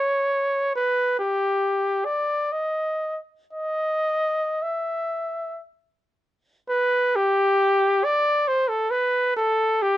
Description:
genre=classical, free, expressive piece for unaccompanied trumpet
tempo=47-72 BPM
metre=3/4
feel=rubato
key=unclear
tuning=A4 = 441 Hz
part: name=warm trumpet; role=solo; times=0.0-10.0 s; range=G4 to E5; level=-21 LUFS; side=equal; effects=none
room=light reverb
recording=dark, warm production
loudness=-21 LUFS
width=side -13 dB against mid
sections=0.0-6.7 A section; 6.7-10.0 B section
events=none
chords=none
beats=| 0.78 1.63 2.52 | 3.53 4.62 5.61 | 6.70 7.62 8.49 | 9.38

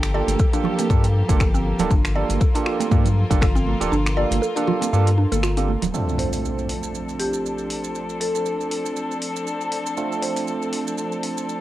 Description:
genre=afro house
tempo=119 BPM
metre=4/4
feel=swing 56% on 16ths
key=D minor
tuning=A4 = 443 Hz
part: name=warm chamber string section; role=sustained chords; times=0.0-11.6 s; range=F3 to A4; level=-28 LUFS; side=left 2 dB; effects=sidechain pumping, low-pass filter, cassette tape
part: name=round analog bass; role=bass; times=0.0-5.9 s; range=D1 to G2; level=-21 LUFS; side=left 1 dB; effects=sidechain pumping
part: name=deep house drum kit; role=drums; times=0.0-11.3 s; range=finger snaps, hi-hat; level=-30 LUFS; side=equal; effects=overdrive, cassette tape
part: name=maracas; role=percussion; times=0.0-11.6 s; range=none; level=-36 LUFS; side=right 10 dB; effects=none
part: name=mallet-like synth pluck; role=arpeggios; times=0.1-5.7 s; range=C4 to D5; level=-27 LUFS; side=left 1 dB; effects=chorus, phaser, sidechain pumping, cassette tape, tape echo
part: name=barky tine electric piano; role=stabs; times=0.1-11.6 s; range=A3 to A4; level=-28 LUFS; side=right 6 dB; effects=medium stereo tremolo, sidechain pumping, low-pass filter, cassette tape, tape echo
part: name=congas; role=percussion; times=0.3-5.9 s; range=none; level=-27 LUFS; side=right 8 dB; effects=none
part: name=electronic kick drum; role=drums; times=0.4-3.5 s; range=none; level=-19 LUFS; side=left 1 dB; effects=overdrive, cassette tape
part: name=impact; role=sound effects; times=5.9-8.0 s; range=none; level=-28 LUFS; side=left 1 dB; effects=none
part: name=marimba with medium mallets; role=melody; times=6.2-10.4 s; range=G4 to C5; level=-30 LUFS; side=left 1 dB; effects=cassette tape, tape echo
room=light reverb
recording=home recording on cassette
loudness=-19 LUFS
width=side -14 dB against mid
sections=0.0-5.9 A section; 5.9-11.6 B section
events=kick drops out 3.9-5.9; impact 5.9-8.0; filter sweep on tine electric piano 5.9-11.6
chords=0.0 Gm9; 5.9 Dm7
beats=0.39 0.90 1.40 | 1.91 2.41 2.92 3.42 | 3.92 4.43 4.93 5.44 | 5.94 6.44 6.95 7.45 | 7.96 8.46 8.96 9.47 | 9.97 10.48 10.98 11.49

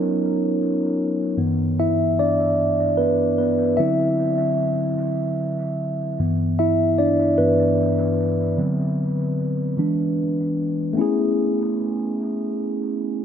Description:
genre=R&B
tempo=50 BPM (dotted quarters)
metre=6/8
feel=straight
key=unclear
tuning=A4 = 437 Hz
part: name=mellow tine electric piano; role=solo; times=0.0-13.2 s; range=G2 to E5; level=-19 LUFS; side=equal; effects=phaser, dub echo
room=moderate plate reverb, RT60 3.1 s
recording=echo-heavy mix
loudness=-19 LUFS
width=side -8 dB against mid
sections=0.0-1.4 A section; 1.4-11.0 B section; 11.0-13.2 A section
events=tine electric piano solo 1.4-11.0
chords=0.0 Bmaj9; 1.4 G6; 3.8 D9; 6.2 G6; 8.6 D6; 9.8 E7; 11.0 Amaj9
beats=0.18 | 1.38 2.58 | 3.78 4.98 | 6.18 7.38 | 8.58 9.78 | 10.98 12.18

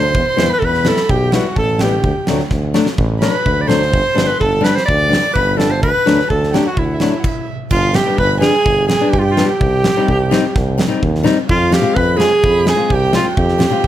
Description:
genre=klezmer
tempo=127 BPM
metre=4/4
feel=straight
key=G phrygian dominant from 7.7 s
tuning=A4 = 440 Hz
part: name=bright clarinet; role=melody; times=0.0-13.9 s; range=E4 to D5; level=-16 LUFS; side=equal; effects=none
part: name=rich violin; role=second line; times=0.0-13.9 s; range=E5 to D6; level=-23 LUFS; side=right 4 dB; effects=none
part: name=nylon-string guitar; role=accompaniment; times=0.0-13.8 s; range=F#3 to F4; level=-18 LUFS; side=left 5 dB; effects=none
part: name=clear tuba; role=bass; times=0.0-13.9 s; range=G1 to G2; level=-19 LUFS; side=equal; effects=none
part: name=huge arena drum kit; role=drums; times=0.1-13.9 s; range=crash cymbal, kick drum, snare drum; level=-19 LUFS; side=right 1 dB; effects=none
room=moderate studio reverb, RT60 0.5 s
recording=none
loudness=-12 LUFS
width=side -12 dB against mid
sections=0.0-7.7 A section; 7.7-13.9 B section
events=stop 7.2-7.7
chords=0.1 Em; 2.0 D; 3.9 G; 5.8 D; 7.7 G; 9.6 Cm; 11.5 Fm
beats=| 0.15 0.62 1.09 1.57 | 2.04 2.52 2.99 3.46 | 3.94 4.41 4.88 5.36 | 5.83 6.30 6.78 7.25 | 7.72 8.19 8.66 9.13 | 9.61 10.08 10.55 11.02 | 11.49 11.96 12.43 12.90 | 13.37 13.84

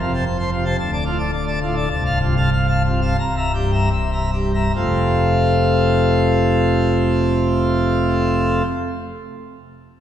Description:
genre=classical, organ toccata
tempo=69-120 BPM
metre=4/4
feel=straight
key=F major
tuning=A4 = 439 Hz
part: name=pipe organ, plenum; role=solo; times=0.0-8.6 s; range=C1 to Bb5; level=-16 LUFS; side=equal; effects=none
room=wet church reverb, RT60 2.8 s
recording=heard from further back in the room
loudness=-16 LUFS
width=side -10 dB against mid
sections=0.0-4.8 A section; 4.8-10.0 B section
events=slowing down 0.0-4.8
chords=0.0 F; 0.8 Dm; 1.9 F/C; 3.2 C7; 4.8 F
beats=0.26 0.78 1.33 | 1.91 2.52 3.19 3.92 | 4.75 5.61 6.47 7.33 | 8.19

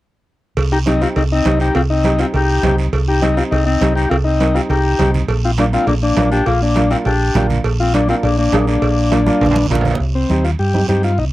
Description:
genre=latin, cumbia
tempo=204 BPM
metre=4/4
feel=straight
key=C minor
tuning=A4 = 440 Hz
part: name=hollow-body short-scale fingered electric bass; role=bass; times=0.6-11.3 s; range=Bb1 to G2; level=-17 LUFS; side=equal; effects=none
part: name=congas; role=percussion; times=0.6-11.0 s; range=none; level=-23 LUFS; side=right 3 dB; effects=none
part: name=cowbell and timbales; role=percussion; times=0.6-10.0 s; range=none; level=-25 LUFS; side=right 6 dB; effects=none
part: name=guiro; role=percussion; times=0.6-11.3 s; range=none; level=-30 LUFS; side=right 7 dB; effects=none
part: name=combo organ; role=melody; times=0.7-11.2 s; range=C4 to G4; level=-18 LUFS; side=left 3 dB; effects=none
part: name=clear clarinet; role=second line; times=0.7-9.7 s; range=Bb3 to Eb4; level=-23 LUFS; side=left 4 dB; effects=none
part: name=dark upright piano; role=accompaniment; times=0.9-11.1 s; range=Bb3 to Bb4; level=-21 LUFS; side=right 2 dB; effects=none
room=little or no reverb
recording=dark, warm production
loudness=-13 LUFS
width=side -16 dB against mid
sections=0.6-10.0 A section; 10.0-11.3 B section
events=drum fill 9.3-10.0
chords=0.6 Cm; 5.3 Bb; 10.0 Cm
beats=| 0.57 0.87 1.16 1.46 | 1.75 2.05 2.34 2.64 | 2.93 3.23 3.52 3.81 | 4.11 4.40 4.70 4.99 | 5.29 5.58 5.88 6.17 | 6.47 6.76 7.05 7.35 | 7.64 7.94 8.23 8.53 | 8.82 9.12 9.41 9.71 | 10.00 10.30 10.59 10.89 | 11.18

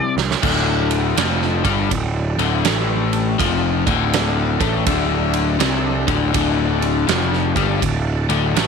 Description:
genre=blues rock power trio and southern rock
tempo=81 BPM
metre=4/4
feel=swing 64% on 8ths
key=D mixolydian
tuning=A4 = 443 Hz
part: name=overdriven electric guitar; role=riff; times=0.0-8.7 s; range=D2 to C5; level=-20 LUFS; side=left 13 dB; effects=none
part: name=fuzz picked electric bass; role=bass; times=0.2-8.7 s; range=D1 to C2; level=-20 LUFS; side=right 1 dB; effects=overdrive
part: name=huge arena drum kit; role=drums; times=0.2-8.7 s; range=crash cymbal, kick drum, ride cymbal, snare drum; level=-22 LUFS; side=right 8 dB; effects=none
part: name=overdriven tonewheel organ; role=sustained chords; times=0.4-8.7 s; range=D4 to G5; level=-30 LUFS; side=right 14 dB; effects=chorus vibrato, slow rotary speaker
room=studio ambience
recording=1960s-style stereo with parts hard left and right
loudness=-16 LUFS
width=side -6 dB against mid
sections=0.4-8.7 A section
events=drum fill 0.0-0.4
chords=0.4 D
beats=| 0.44 1.18 1.91 2.65 | 3.39 4.13 4.87 5.60 | 6.34 7.08 7.82 8.55

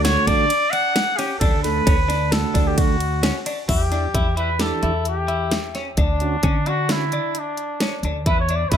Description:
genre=progressive instrumental, band music in an uneven meter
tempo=132 BPM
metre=5/4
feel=straight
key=unclear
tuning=A4 = 440 Hz
part: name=mellow trumpet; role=melody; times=0.0-8.8 s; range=D4 to F#5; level=-23 LUFS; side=equal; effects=ping-pong delay
part: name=tonewheel organ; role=accompaniment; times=0.0-8.8 s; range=D3 to A4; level=-25 LUFS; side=right 4 dB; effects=overdrive, slow rotary speaker
part: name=upright bass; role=bass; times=0.0-8.8 s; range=D2 to D3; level=-23 LUFS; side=equal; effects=none
part: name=dubstep drum kit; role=drums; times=0.0-8.8 s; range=crash cymbal, hi-hat, kick drum, ride cymbal, snare drum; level=-22 LUFS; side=equal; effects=none
part: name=twelve-string electric guitar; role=arpeggios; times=0.1-8.8 s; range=C#4 to G4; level=-28 LUFS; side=left 3 dB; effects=spring reverb, ping-pong delay
room=light reverb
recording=none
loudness=-18 LUFS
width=side -9 dB against mid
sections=0.0-3.7 A section; 3.7-8.8 B section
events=none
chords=0.0 D; 3.7 Em7; 6.0 Dmaj7; 8.3 E7(no3)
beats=0.05 0.50 0.96 | 1.41 1.87 2.33 2.78 3.24 | 3.69 4.15 4.61 5.06 5.52 | 5.97 6.43 6.89 7.34 7.80 | 8.26 8.71

